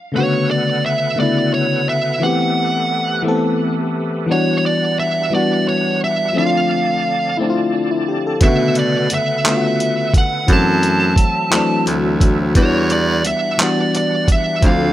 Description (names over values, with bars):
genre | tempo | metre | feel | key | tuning
slow six-eight R&B | 58 BPM (dotted quarters) | 6/8 | straight | B phrygian | A4 = 440 Hz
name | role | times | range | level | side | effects
FM electric piano | accompaniment | 0.1-14.9 s | C#3 to A4 | -18 LUFS | left 2 dB | chorus
bright tonewheel organ | sustained chords | 0.1-14.9 s | D3 to A5 | -27 LUFS | right 2 dB | overdrive, chorus vibrato, fast rotary speaker
fuzz lead guitar | melody | 0.2-14.9 s | C#5 to A5 | -19 LUFS | right 2 dB | distortion
warm baritone saxophone | bass | 8.4-14.9 s | D2 to B2 | -18 LUFS | right 1 dB | none
dusty soul sampler-style drum kit | drums | 8.4-14.8 s | handclaps, hi-hat, kick drum | -16 LUFS | right 1 dB | none
room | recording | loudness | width
light reverb, digital ambience | none | -14 LUFS | side -13 dB against mid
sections
0.1-14.9 A section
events
none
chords
0.1 Bm9; 2.2 Am9; 4.3 Em9; 6.3 Dm9; 8.4 Bm9; 10.5 F#m7b5; 12.6 Em9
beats
| 0.14 1.18 | 2.21 3.25 | 4.28 5.31 | 6.35 7.38 | 8.42 9.45 | 10.49 11.52 | 12.55 13.59 | 14.62